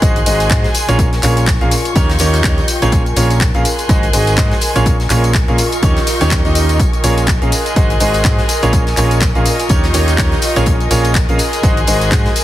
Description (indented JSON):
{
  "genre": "piano house",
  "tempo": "124 BPM",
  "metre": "4/4",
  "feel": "swing 57% on 16ths",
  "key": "Bb minor",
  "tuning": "A4 = 441 Hz",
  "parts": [
    { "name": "dark chamber string section", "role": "sustained chords", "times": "0.0-12.4 s", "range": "Ab4 to G6", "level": "-24 LUFS", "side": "left 1 dB", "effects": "sidechain pumping" },
    { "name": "clear concert grand piano", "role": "riff", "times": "0.0-12.3 s", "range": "Bb2 to F5", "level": "-18 LUFS", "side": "right 1 dB", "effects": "sidechain pumping, ping-pong delay" },
    { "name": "overdriven fingered electric bass", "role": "bass", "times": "0.0-12.2 s", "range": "Ab1 to Ab2", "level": "-17 LUFS", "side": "equal", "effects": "sidechain pumping" },
    { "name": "electronic kick drum", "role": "drums", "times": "0.0-12.2 s", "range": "none", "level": "-16 LUFS", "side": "equal", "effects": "small room ambience" },
    { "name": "house drum kit", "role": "drums", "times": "0.0-12.4 s", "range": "handclaps, hi-hat, tambourine", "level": "-20 LUFS", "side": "left 2 dB", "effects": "small room ambience" },
    { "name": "tight funk drum kit", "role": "drums", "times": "0.0-12.4 s", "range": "hi-hat, snare drum", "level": "-29 LUFS", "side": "left 3 dB", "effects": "none" },
    { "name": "tambourine", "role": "percussion", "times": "0.0-12.4 s", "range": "none", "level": "-29 LUFS", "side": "equal", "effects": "none" },
    { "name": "airy breathy pad", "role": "texture", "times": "0.0-12.4 s", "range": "F4 to Ab5", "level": "-22 LUFS", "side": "right 1 dB", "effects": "chorus, sidechain pumping" }
  ],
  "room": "small room ambience",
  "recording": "heavily compressed radio sound, multiband compression",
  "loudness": "-11 LUFS",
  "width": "side -14 dB against mid",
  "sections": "0.0-12.4 A section",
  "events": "none",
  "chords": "0.0 Ab7; 1.0 Bbm7; 2.0 Eb7; 2.9 Bbm7; 3.6 Ab7; 4.9 Bbm7; 5.8 Eb7; 6.8 Bbm7; 7.5 Ab7; 8.7 Bbm7; 9.7 Eb7; 10.7 Bbm7; 11.4 Ab7"
}